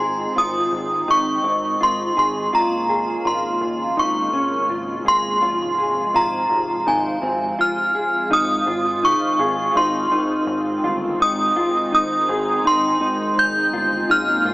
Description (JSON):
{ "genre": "dream pop", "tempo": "83 BPM", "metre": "4/4", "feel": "straight", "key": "Ab major", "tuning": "A4 = 439 Hz", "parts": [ { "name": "synth chime", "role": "melody", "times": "0.0-14.5 s", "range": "Ab5 to G6", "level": "-18 LUFS", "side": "equal", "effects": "ensemble chorus, digital delay" }, { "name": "phased analog pad", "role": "sustained chords", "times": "0.0-14.5 s", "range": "C3 to F4", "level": "-27 LUFS", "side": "right 1 dB", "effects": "phaser, chorus" }, { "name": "mellow electric guitar", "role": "arpeggios", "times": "0.0-14.5 s", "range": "C4 to Ab4", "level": "-24 LUFS", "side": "left 1 dB", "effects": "ensemble chorus, digital delay" }, { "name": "chorused synth bass", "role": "bass", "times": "0.0-14.5 s", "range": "G1 to Ab1", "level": "-32 LUFS", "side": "equal", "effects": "none" } ], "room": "moderate huge ambient reverb, RT60 7.0 s", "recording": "small speaker sound", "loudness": "-17 LUFS", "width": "side -21 dB against mid", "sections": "0.0-8.3 A section; 8.3-14.5 B section", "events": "none", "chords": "0.0 Ab6; 2.5 Bbm7/Ab; 5.4 Fm/Ab; 8.3 Ab6" }